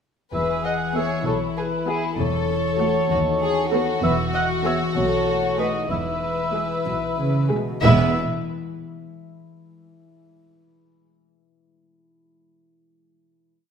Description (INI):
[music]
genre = cinematic, playful, whimsical film cue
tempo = 64 BPM (dotted quarters)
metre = 6/8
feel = straight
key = E major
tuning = A4 = 440 Hz
[part]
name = warm studio violin section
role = melody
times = 0.3-8.2 s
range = E4 to E5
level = -28 LUFS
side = left 4 dB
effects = none
[part]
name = mellow cor anglais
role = second line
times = 0.3-8.1 s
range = G#4 to F#5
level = -25 LUFS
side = right 2 dB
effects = none
[part]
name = warm studio violin section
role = second line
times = 0.3-8.2 s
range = E4 to B4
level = -28 LUFS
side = left 3 dB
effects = none
[part]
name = concert harp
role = arpeggios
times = 0.3-9.8 s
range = B2 to E5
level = -29 LUFS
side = left 7 dB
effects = none
[part]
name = dark studio cello section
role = bass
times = 0.3-8.2 s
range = D#2 to C#3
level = -28 LUFS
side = right 3 dB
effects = none
[part]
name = dark studio double bass section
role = bass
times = 0.3-8.2 s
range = E1 to D#2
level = -25 LUFS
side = right 3 dB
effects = none
[part]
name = warm studio viola section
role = accompaniment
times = 0.9-8.2 s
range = G#3 to A4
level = -27 LUFS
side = right 2 dB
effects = none
[sound]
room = moderate scoring stage reverb, RT60 1.6 s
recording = none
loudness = -20 LUFS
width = side -7 dB against mid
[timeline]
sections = 0.3-7.8 A section; 7.8-9.8 final chord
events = none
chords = 0.3 E; 2.2 F#m7/E; 3.1 B7/D#; 4.0 E; 5.0 B13; 5.9 E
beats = | 0.34 1.26 | 2.19 3.11 | 4.04 4.96 | 5.91 6.87 | 7.83 8.80